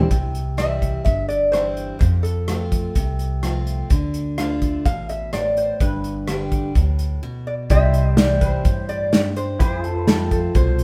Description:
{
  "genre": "honky-tonk and classic country",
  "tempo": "126 BPM",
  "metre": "4/4",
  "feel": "straight",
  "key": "C major",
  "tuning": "A4 = 440 Hz",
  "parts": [
    { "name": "picked steel-string acoustic guitar", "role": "accompaniment", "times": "0.0-10.8 s", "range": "F2 to G4", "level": "-29 LUFS", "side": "equal", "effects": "none" },
    { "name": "pedal steel guitar", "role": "sustained chords", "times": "0.0-0.1, 7.7-10.8 s", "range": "E4 to C5", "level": "-32 LUFS", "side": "equal", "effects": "none" },
    { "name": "upright bass", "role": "bass", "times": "0.1-10.8 s", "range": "G1 to G2", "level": "-26 LUFS", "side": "equal", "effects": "none" },
    { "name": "natural country drum kit", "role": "drums", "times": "0.1-10.8 s", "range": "hi-hat, kick drum, rim click, snare drum", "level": "-22 LUFS", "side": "equal", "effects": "none" },
    { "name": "lap resonator guitar", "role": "melody", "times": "0.6-10.8 s", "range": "A4 to F5", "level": "-26 LUFS", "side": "equal", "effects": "none" }
  ],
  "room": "moderate stone room reverb, RT60 1.3 s",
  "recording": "band playing live in one room",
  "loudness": "-20 LUFS",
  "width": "mono",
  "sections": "0.1-7.7 A section; 7.7-10.8 B section",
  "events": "break 7.2-7.7",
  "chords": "0.1 C; 2.0 F; 3.9 Dm; 5.8 G; 7.7 C; 9.6 F"
}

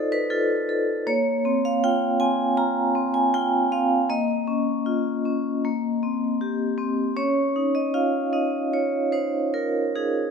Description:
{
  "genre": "classical, contemporary piece for solo vibraphone",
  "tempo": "78 BPM",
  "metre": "4/4",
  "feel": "rubato",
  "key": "unclear",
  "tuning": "A4 = 440 Hz",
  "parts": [
    { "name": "vibraphone with medium hard mallets", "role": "solo", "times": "0.0-10.3 s", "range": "Bb3 to Bb5", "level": "-21 LUFS", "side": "equal", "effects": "none" }
  ],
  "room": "light reverb",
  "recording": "close, detailed microphones",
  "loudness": "-21 LUFS",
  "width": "side -6 dB against mid",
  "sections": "0.0-10.3 A section",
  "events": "none",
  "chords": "0.0 F7/Eb; 1.1 Bbsus2; 4.1 Dbadd9/Bb; 5.6 Cm7/Bb; 7.2 Dbadd9"
}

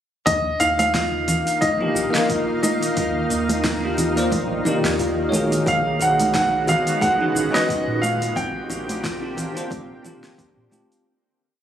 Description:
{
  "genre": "sunset chillout",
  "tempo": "89 BPM",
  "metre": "4/4",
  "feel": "swing 56% on 16ths",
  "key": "unclear",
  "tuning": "A4 = 440 Hz",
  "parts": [
    { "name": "warm grand piano", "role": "melody", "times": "0.3-10.3 s", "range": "Eb5 to G5", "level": "-22 LUFS", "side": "right 1 dB", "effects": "digital delay" },
    { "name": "shimmering ambient pad", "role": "sustained chords", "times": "1.1-11.0 s", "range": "D3 to F5", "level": "-28 LUFS", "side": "right 1 dB", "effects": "chorus, built-in reverb" },
    { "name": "kalimba", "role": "arpeggios", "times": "0.3-10.9 s", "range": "C4 to G#4", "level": "-28 LUFS", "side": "left 1 dB", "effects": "tape echo" },
    { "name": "round analog bass", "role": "bass", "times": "0.3-10.7 s", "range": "Eb1 to Bb2", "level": "-32 LUFS", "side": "equal", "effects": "none" },
    { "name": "deep house drum kit", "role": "drums", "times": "0.3-11.0 s", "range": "cabasa, hi-hat, snare drum, toms", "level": "-28 LUFS", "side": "equal", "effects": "overdrive, studio reverb" },
    { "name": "electronic kick drum", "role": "drums", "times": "0.3-10.5 s", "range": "none", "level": "-30 LUFS", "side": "equal", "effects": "overdrive, studio reverb" },
    { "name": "congas", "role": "percussion", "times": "0.8-10.9 s", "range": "none", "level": "-28 LUFS", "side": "right 1 dB", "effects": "none" },
    { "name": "bell-like tine electric piano", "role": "accompaniment", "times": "1.8-11.0 s", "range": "Eb3 to Eb5", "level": "-24 LUFS", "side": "equal", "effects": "fast stereo tremolo, auto-pan, tape echo" }
  ],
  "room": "moderate lush hall reverb, RT60 1.9 s",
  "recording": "recorded on a phone in the room, club reverb, compression",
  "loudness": "-18 LUFS",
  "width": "side -10 dB against mid",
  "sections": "0.3-11.1 groove",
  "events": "fade-out 7.5-11.1",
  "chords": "0.3 Ebmaj9; 5.7 B6; 8.0 Bb69"
}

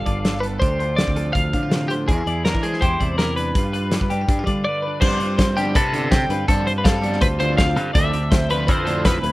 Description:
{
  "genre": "math rock and midwest emo",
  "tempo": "164 BPM",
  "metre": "4/4",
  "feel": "straight",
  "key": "unclear",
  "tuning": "A4 = 441 Hz",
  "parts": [
    { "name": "twelve-string electric guitar", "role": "melody", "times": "0.0-9.3 s", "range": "G4 to F5", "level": "-24 LUFS", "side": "left 1 dB", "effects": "slapback echo" },
    { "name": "twelve-string electric guitar", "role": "accompaniment", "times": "0.0-9.3 s", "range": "G2 to B4", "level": "-27 LUFS", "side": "right 3 dB", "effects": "none" },
    { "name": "twelve-string electric guitar", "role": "arpeggios", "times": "0.0-9.3 s", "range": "F4 to F5", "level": "-29 LUFS", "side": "left 4 dB", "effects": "none" },
    { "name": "growling fingered electric bass", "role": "bass", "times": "0.0-9.3 s", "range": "G1 to G3", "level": "-24 LUFS", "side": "equal", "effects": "overdrive" },
    { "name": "loose indie drum kit", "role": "drums", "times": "0.1-9.3 s", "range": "crash cymbal, hi-hat, kick drum, snare drum", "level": "-20 LUFS", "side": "equal", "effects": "none" },
    { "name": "crunchy overdriven guitar", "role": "riff", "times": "5.0-9.3 s", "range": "D3 to D4", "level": "-29 LUFS", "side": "equal", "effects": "none" }
  ],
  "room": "small room ambience",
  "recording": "rough home demo mix",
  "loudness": "-17 LUFS",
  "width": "side -18 dB against mid",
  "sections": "0.0-5.0 A section; 5.0-9.3 B section",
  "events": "break 4.7-5.0",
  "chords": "0.0 G9; 0.6 Dm7; 2.1 E7alt; 3.6 G7; 5.0 G7sus4; 8.0 Dm9"
}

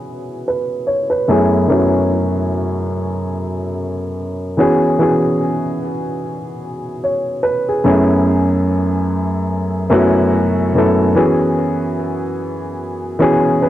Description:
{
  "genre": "hip hop",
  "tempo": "73 BPM",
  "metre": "4/4",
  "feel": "swing 55% on 16ths",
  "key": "F# minor",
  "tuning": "A4 = 440 Hz",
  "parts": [
    { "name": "dark upright piano", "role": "solo", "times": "0.0-13.7 s", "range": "F#2 to C#5", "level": "-14 LUFS", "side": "equal", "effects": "cassette tape, low-pass filter, tape echo" }
  ],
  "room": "light reverb",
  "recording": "dry, gritty hardware recording",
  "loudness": "-14 LUFS",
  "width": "side -13 dB against mid",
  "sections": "0.0-7.9 A section; 7.9-13.7 B section",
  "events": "none",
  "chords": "0.0 E69; 1.3 F#m11; 4.6 E69; 7.9 F#m11; 11.2 E69"
}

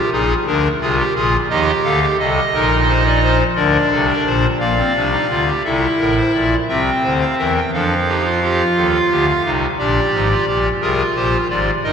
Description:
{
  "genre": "classical, baroque-style 4-part fugue for pipe organ",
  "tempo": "58 BPM (dotted quarters)",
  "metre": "12/8",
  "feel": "straight",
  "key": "unclear",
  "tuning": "A4 = 440 Hz",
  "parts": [
    { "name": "pipe organ, clarinet reed", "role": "solo", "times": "0.0-11.9 s", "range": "G1 to G5", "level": "-14 LUFS", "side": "equal", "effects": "none" }
  ],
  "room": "wet church reverb, RT60 3.4 s",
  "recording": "none",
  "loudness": "-14 LUFS",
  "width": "side -7 dB against mid",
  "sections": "0.0-5.6 A section; 5.6-11.9 B section",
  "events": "none",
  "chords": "0.0 Bb7; 1.5 Bb; 5.6 C7; 7.7 F; 9.8 Bb7"
}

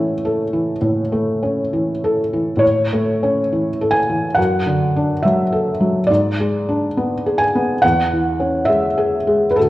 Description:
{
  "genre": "classical, romantic nocturne for solo piano",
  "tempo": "69 BPM",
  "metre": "4/4",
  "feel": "rubato",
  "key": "A major",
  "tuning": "A4 = 440 Hz",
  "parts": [
    { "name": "felt-muted upright piano", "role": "solo", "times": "0.0-9.7 s", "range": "D2 to G#5", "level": "-15 LUFS", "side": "equal", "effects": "none" }
  ],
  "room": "wet recital hall reverb, RT60 1.4 s",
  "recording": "worn, warbling old tape, cassette tape, warbly pitch drift",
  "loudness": "-15 LUFS",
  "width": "side -16 dB against mid",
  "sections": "0.0-9.7 A section",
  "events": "none",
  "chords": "0.0 A; 4.4 D/F#; 6.1 G#dim; 7.8 C#m/E"
}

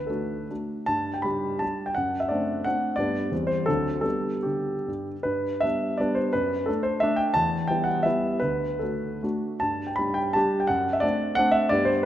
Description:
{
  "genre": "classical, romantic triple-time dance for piano with dotted rhythms",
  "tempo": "137-190 BPM",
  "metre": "3/4",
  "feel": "rubato",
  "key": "G major",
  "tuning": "A4 = 441 Hz",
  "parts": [
    { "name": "warm grand piano", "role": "solo", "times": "0.0-12.1 s", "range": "D2 to B5", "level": "-23 LUFS", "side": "equal", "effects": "none" }
  ],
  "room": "moderate concert hall reverb, RT60 1.9 s",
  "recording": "none",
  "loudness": "-23 LUFS",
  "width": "side -12 dB against mid",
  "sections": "0.0-5.3 A section; 5.3-12.1 A section",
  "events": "none",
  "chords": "0.0 D; 0.9 G; 2.0 D7/F#; 3.0 G; 3.3 C/E; 3.7 D7; 4.0 G; 6.3 D/F#; 7.4 Em; 8.4 D; 9.6 G5; 10.7 D7/F#"
}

